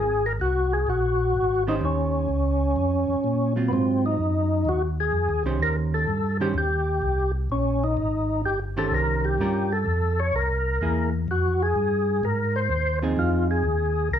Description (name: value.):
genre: soul jazz organ trio.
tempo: 127 BPM.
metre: 4/4.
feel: swing 67% on 8ths.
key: Eb mixolydian.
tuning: A4 = 440 Hz.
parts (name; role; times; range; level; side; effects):
percussive tonewheel organ; melody; 0.0-14.2 s; Cb4 to Db5; -24 LUFS; left 1 dB; slow rotary speaker, overdrive, chorus vibrato.
mellow tonewheel organ; bass; 0.0-14.2 s; G1 to Bb2; -25 LUFS; equal; overdrive, chorus vibrato, slow rotary speaker.
hollow-body jazz guitar; accompaniment; 1.7-13.6 s; Eb3 to C5; -28 LUFS; right 4 dB; none.
room: light reverb.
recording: small room reverb.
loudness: -21 LUFS.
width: side -9 dB against mid.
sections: 0.0-14.2 A section.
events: none.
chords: 0.0 Ab9; 1.8 Eb13; 3.7 Ab6; 5.6 Eb6; 9.4 Gm7b5; 10.3 Caug7; 11.3 Fm7.